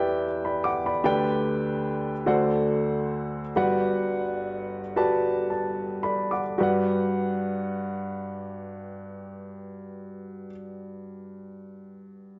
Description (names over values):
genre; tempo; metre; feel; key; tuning
gospel; 34-50 BPM (dotted quarters); 6/8; straight; G major; A4 = 440 Hz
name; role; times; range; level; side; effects
warm upright piano; solo; 0.0-12.4 s; G1 to D6; -28 LUFS; equal; none
room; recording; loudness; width
moderate scoring stage reverb, RT60 1.6 s; nothing above 7.9 kHz; -26 LUFS; mono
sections
0.0-6.6 A section; 6.6-10.2 B section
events
slowing down 1.0-6.6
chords
0.0 Em7; 1.0 G/D; 2.3 D7; 3.6 Gmaj7